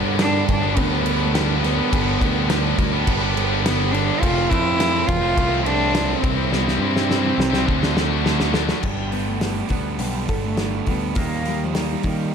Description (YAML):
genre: quiet-loud alternative rock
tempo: 104 BPM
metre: 4/4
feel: straight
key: G major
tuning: A4 = 440 Hz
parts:
  - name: scooped high-gain guitar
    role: riff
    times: 0.0-8.8 s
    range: F2 to E4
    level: -25 LUFS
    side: left 17 dB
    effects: distortion
  - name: thick fuzz guitar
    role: riff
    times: 0.0-12.3 s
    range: G2 to F#4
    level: -26 LUFS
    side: right 14 dB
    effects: distortion
  - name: growling picked electric bass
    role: bass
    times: 0.0-12.3 s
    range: F1 to Eb3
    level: -24 LUFS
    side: equal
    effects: overdrive
  - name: warm cello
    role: melody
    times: 0.2-12.3 s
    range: F3 to F4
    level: -25 LUFS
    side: equal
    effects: plate reverb, digital delay
  - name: loose indie drum kit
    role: drums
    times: 0.2-12.2 s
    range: crash cymbal, hi-hat, kick drum, snare drum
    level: -23 LUFS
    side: equal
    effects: none
  - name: fingerpicked steel-string acoustic guitar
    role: arpeggios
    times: 8.8-12.3 s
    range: Eb3 to A4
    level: -30 LUFS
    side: left 4 dB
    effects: plate reverb, digital delay
room: light reverb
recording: none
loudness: -18 LUFS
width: side -7 dB against mid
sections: 0.0-8.8 A section; 8.8-12.3 B section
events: drum fill 6.5-8.8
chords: 0.0 G; 4.2 F; 6.2 C; 7.7 D; 8.8 Gadd9; 11.2 Eb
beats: 0.20 0.77 1.34 | 1.92 2.49 3.07 3.64 | 4.22 4.79 5.37 5.95 | 6.52 7.10 7.68 8.26 | 8.84 9.42 10.00 10.58 | 11.17 11.75 12.33